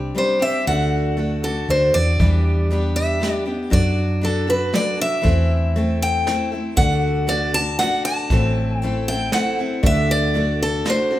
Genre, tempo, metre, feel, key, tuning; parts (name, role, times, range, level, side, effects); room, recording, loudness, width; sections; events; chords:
acoustic folk duo or small band; 118 BPM; 3/4; straight; A4 = 441 Hz
picked steel-string acoustic guitar; accompaniment; 0.0-11.2 s; A2 to A4; -23 LUFS; left 1 dB
hollow-body short-scale fingered electric bass; bass; 0.0-10.8 s; A1 to F#2; -21 LUFS; equal
picked acoustic archtop guitar; melody; 0.2-11.2 s; A4 to A5; -21 LUFS; equal
soft brush drum kit; drums; 2.2-11.0 s; hi-hat, kick drum, snare drum; -22 LUFS; equal
wet recital hall reverb, RT60 1.6 s; recorded in a church or concert hall; -17 LUFS; side -14 dB against mid
0.0-2.2 A section; 2.2-11.2 B section
0.0 Cadd9; 0.7 D; 2.2 Em7; 3.7 D/F#; 5.3 Am/E; 6.8 D; 8.3 Am; 9.8 D